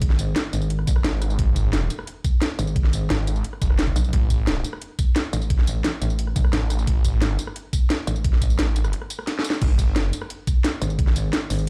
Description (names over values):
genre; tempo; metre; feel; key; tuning
dark technical drum and bass; 175 BPM; 4/4; straight; G# phrygian; A4 = 439 Hz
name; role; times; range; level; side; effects
metallic wobble bass; bass; 0.0-8.6, 10.8-11.7 s; G#1 to B1; -25 LUFS; equal; chorus
drum and bass drum kit; drums; 0.0-11.7 s; crash cymbal, hi-hat, rim click, snare drum, tambourine; -29 LUFS; equal; none
electronic kick drum; drums; 0.0-11.1 s; none; -22 LUFS; equal; overdrive
snarling distorted saw bass; bass; 1.0-10.1 s; F#1 to A1; -24 LUFS; equal; distortion, tube saturation, sidechain pumping
room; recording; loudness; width
little or no reverb; played on a big sound system in a bare room, large studio reverb; -22 LUFS; mono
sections
0.0-11.7 A section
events
break 8.9-9.6; drum fill 9.3-9.6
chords
none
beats
| 0.02 0.36 0.70 1.04 | 1.39 1.73 2.07 2.42 | 2.76 3.10 3.44 3.79 | 4.13 4.47 4.82 5.16 | 5.50 5.84 6.19 6.53 | 6.87 7.22 7.56 7.90 | 8.24 8.59 8.93 9.27 | 9.62 9.96 10.30 10.64 | 10.99 11.33 11.67